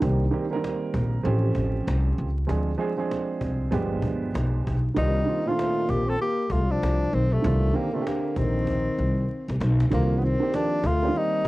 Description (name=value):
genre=hip hop, jazz-hop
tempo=97 BPM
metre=4/4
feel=swing 61% on 16ths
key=C dorian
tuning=A4 = 442 Hz
part: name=dark grand piano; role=accompaniment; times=0.0-11.5 s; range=Bb2 to D5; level=-28 LUFS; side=right 4 dB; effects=none
part: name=upright bass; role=bass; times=0.0-11.5 s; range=G1 to D2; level=-24 LUFS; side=equal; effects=none
part: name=cajon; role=drums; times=0.0-11.5 s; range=none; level=-34 LUFS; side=equal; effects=none
part: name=breathy tenor saxophone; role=melody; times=5.0-11.5 s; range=A3 to A4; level=-27 LUFS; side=equal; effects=none
part: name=breathy trombone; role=second line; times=5.0-11.5 s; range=C3 to C4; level=-31 LUFS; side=left 4 dB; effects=none
room=light reverb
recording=home recording on cassette, vinyl crackle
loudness=-22 LUFS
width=side -18 dB against mid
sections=0.0-9.9 A section; 9.9-11.5 B section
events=drum fill 8.7-9.9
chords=0.0 Cm7; 1.3 A7alt; 2.5 Dm7b5; 3.7 G7b9; 5.0 Cm11